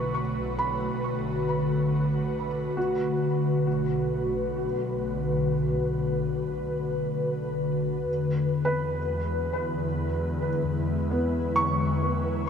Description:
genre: ambient.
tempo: free time.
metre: none.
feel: none.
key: B dorian.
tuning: A4 = 440 Hz.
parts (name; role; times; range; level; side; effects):
ethereal airy pad; sustained chords; 0.0-12.5 s; D3 to B4; -26 LUFS; left 1 dB; ensemble chorus, built-in reverb.
felt-muted upright piano; arpeggios; 0.0-12.5 s; B3 to C#6; -31 LUFS; right 1 dB; ping-pong delay.
rich studio double bass section; bass; 0.0-12.5 s; B1 to E2; -33 LUFS; equal; none.
room: wet huge ambient reverb, RT60 8.4 s.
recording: dreamy mix soaked in reverb.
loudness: -25 LUFS.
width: side -7 dB against mid.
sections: 0.0-2.8 A section; 2.8-12.5 B section.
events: none.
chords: 0.0 Bm7; 8.1 E7.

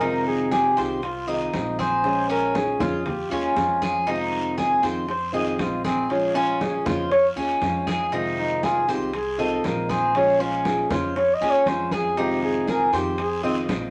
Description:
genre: latin, Cuban son and guajira.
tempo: 118 BPM.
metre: 4/4.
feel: straight.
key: F minor.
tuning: A4 = 439 Hz.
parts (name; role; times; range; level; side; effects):
trumpet with bucket mute; melody; 0.0-13.6 s; C4 to Eb5; -27 LUFS; equal; none.
fingerpicked plugged-in steel-string acoustic guitar; accompaniment; 0.0-13.9 s; C3 to F4; -30 LUFS; equal; none.
Cuban tres; arpeggios; 0.0-13.9 s; Db4 to Eb5; -27 LUFS; equal; none.
upright bass; bass; 0.0-13.9 s; Bb1 to F2; -38 LUFS; equal; none.
bongos; percussion; 0.0-13.9 s; none; -38 LUFS; equal; none.
congas; percussion; 0.0-13.9 s; none; -34 LUFS; equal; none.
guiro; percussion; 0.0-13.9 s; none; -42 LUFS; equal; none.
room: wet small room reverb, RT60 0.6 s.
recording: none.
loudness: -23 LUFS.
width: mono.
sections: 0.0-13.9 A section.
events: muted trumpet solo 0.0-13.9.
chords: 0.0 Fm7; 2.0 Bbm7; 4.1 Fm7; 6.1 Bbm7; 8.1 Fm7; 10.1 Bbm7; 12.2 Fm7.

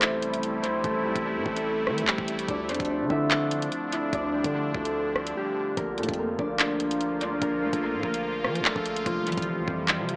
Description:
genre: hip hop, drill.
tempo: 146 BPM.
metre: 4/4.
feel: half-time.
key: unclear.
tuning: A4 = 438 Hz.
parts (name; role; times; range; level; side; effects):
concert harp; melody; 0.0-10.2 s; E3 to E5; -28 LUFS; equal; dub echo.
sweeping resonant pad; sustained chords; 0.0-10.2 s; C3 to F4; -31 LUFS; equal; chorus.
long sustained 808-style bass; bass; 0.0-10.2 s; F1 to F3; -36 LUFS; equal; none.
drill drum kit; drums; 0.0-10.2 s; handclaps, hi-hat, kick drum, rim click; -28 LUFS; equal; overdrive, dub echo.
room: moderate spring reverb, RT60 2.1 s.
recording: echo-heavy mix, small speaker sound.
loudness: -24 LUFS.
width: side -26 dB against mid.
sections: 0.0-10.2 A section.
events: drums muted 5.4-5.8.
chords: 0.0 Am7; 2.5 Dm; 5.8 Bbmaj7; 9.1 Fsus2.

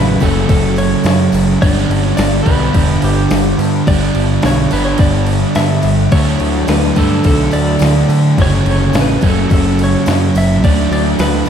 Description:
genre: rock, shoegaze and dream pop.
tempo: 107 BPM.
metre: 4/4.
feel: straight.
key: G lydian.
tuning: A4 = 440 Hz.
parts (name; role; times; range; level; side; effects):
direct-recorded clean electric guitar; melody; 0.0-11.5 s; G4 to E5; -21 LUFS; left 1 dB; diffuse ambient delay.
overdriven semi-hollow guitar; riff; 0.0-11.5 s; F#2 to D4; -16 LUFS; right 7 dB; reverse reverb.
thick fuzz guitar; riff; 0.0-11.5 s; F#2 to D4; -17 LUFS; left 8 dB; distortion, wide subtle chorus.
growling picked electric bass; bass; 0.0-11.4 s; E1 to D3; -17 LUFS; left 1 dB; overdrive.
crisp 8-bit digital drum machine; drums; 0.1-11.4 s; crash cymbal, kick drum, snare drum; -17 LUFS; equal; overdrive.
tambourine; percussion; 0.2-11.5 s; none; -37 LUFS; left 11 dB; none.
room: moderate lush hall reverb, RT60 1.7 s.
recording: dreamy mix soaked in reverb.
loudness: -10 LUFS.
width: side -8 dB against mid.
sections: 0.0-11.5 A section.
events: none.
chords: 0.0 F#m; 1.6 G; 6.1 D; 8.4 F#m; 10.6 D.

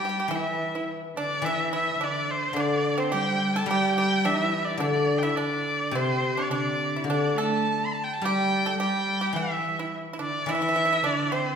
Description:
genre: chinese traditional, Chinese chamber ensemble.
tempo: 107 BPM.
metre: 4/4.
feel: rubato.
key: D shang mode.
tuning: A4 = 437 Hz.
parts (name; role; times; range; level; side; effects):
clear erhu; melody; 0.0-11.6 s; C5 to C6; -27 LUFS; equal; none.
pipa; second line; 0.0-11.6 s; C4 to A4; -31 LUFS; right 4 dB; none.
warm cello; second line; 0.0-11.6 s; C3 to A3; -30 LUFS; right 2 dB; none.
guzheng; accompaniment; 0.3-11.6 s; C3 to G3; -30 LUFS; left 4 dB; none.
room: wet recital hall reverb, RT60 1.8 s.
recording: recorded in a church or concert hall.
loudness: -23 LUFS.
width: side -7 dB against mid.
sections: 0.0-11.6 A section.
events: none.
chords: none.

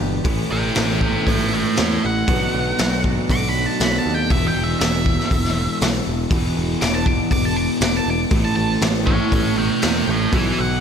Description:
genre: quiet-loud alternative rock.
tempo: 119 BPM.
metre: 4/4.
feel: straight.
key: E dorian.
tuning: A4 = 440 Hz.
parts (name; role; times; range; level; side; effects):
semi-hollow electric guitar; arpeggios; 0.0-4.3 s; A2 to G4; -27 LUFS; right 5 dB; slapback echo.
raw garage guitar; riff; 0.0-10.8 s; E2 to B3; -22 LUFS; equal; overdrive.
picked electric bass; bass; 0.0-10.8 s; E1 to E2; -24 LUFS; equal; none.
raw garage drum kit; drums; 0.2-10.4 s; hi-hat, kick drum, snare drum; -22 LUFS; equal; none.
octave-fuzz lead guitar; melody; 0.5-10.8 s; B4 to D6; -23 LUFS; right 1 dB; distortion, slapback echo.
room: light reverb, small room ambience.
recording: none.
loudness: -17 LUFS.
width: side -7 dB against mid.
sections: 0.0-10.8 A section.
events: lead electric guitar solo 0.0-10.8.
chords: 0.3 A; 2.3 Bm7; 4.3 E5; 8.3 A.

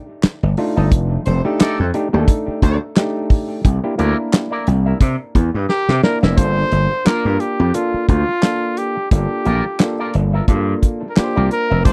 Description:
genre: funk.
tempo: 88 BPM.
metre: 4/4.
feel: swing 56% on 16ths.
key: G minor.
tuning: A4 = 440 Hz.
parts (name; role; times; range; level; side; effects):
gritty slap bass; bass; 0.2-11.9 s; F1 to C3; -19 LUFS; equal; overdrive.
warm soul drum kit; drums; 0.2-11.9 s; handclaps, hi-hat, kick drum, snare drum; -16 LUFS; equal; none.
overdriven clav; stabs; 0.6-11.9 s; A3 to D5; -25 LUFS; equal; tape echo.
electric guitar with an envelope filter; accompaniment; 0.8-11.8 s; Eb4 to E5; -26 LUFS; equal; harmonic tremolo.
warm horn section; second line; 1.3-2.8, 11.8-11.9 s; A3 to D5; -28 LUFS; equal; none.
mellow trumpet; melody; 5.7-11.9 s; F4 to C5; -22 LUFS; equal; none.
room: little or no reverb.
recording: dry, close 1970s-style studio recording.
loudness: -17 LUFS.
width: mono.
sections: 0.0-6.4 A section; 6.4-11.9 B section.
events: clav fill 5.4-6.4; drum fill 5.7-6.4.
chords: 0.0 F13; 3.6 C9; 6.4 Gm7.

